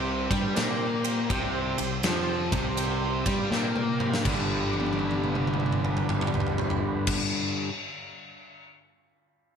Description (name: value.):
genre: blues rock power trio and southern rock.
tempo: 81 BPM.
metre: 4/4.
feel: swing 66% on 8ths.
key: G mixolydian.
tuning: A4 = 440 Hz.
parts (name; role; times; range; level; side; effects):
overdriven tonewheel organ; sustained chords; 0.0-7.1 s; G3 to B5; -35 LUFS; right 4 dB; lush chorus.
distorted electric guitar; riff; 0.0-7.7 s; G2 to Bb3; -28 LUFS; left 1 dB; distortion.
fuzz fingered electric bass; bass; 0.0-7.1 s; G1 to Bb2; -33 LUFS; equal; overdrive.
big rock drum kit; drums; 0.3-8.7 s; crash cymbal, kick drum, ride cymbal, snare drum, toms; -29 LUFS; equal; none.
room: moderate concert hall reverb, RT60 2.1 s.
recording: big arena sound.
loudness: -24 LUFS.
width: side -7 dB against mid.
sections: 0.0-4.3 A section; 4.3-7.2 B section.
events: tonewheel organ fill 2.8-4.3; drum fill 3.5-4.3, 4.6-7.0.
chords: 0.0 C5; 4.3 G.